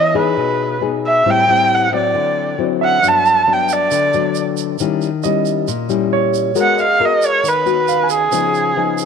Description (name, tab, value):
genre	bossa nova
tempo	136 BPM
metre	4/4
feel	straight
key	unclear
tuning	A4 = 440 Hz
part	dark erhu	melody	0.0-9.1 s	Ab4 to A5	-14 LUFS	right 2 dB	none
part	clear concert grand piano	accompaniment	0.0-9.1 s	Db5 to Ab5	-23 LUFS	right 16 dB	none
part	nylon-string guitar	accompaniment	0.0-9.1 s	G2 to Bb4	-18 LUFS	left 9 dB	none
part	tube shaker	percussion	3.0-9.1 s	none	-29 LUFS	right 20 dB	none
room	moderate plate reverb, RT60 3.1 s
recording	1960s-style stereo with parts hard left and right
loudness	-13 LUFS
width	side -6 dB against mid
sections	0.0-9.1 A section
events	erhu solo 0.0-9.1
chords	0.0 Emaj7; 1.3 Am7; 2.1 D9; 3.0 Gmaj7; 4.8 Eb7b9; 6.6 Abm9; 8.3 Db9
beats	0.37 0.81 | 1.26 1.70 2.14 2.58 | 3.02 3.47 3.91 4.35 | 4.79 5.23 5.68 6.12 | 6.56 7.00 7.44 7.88 | 8.33 8.77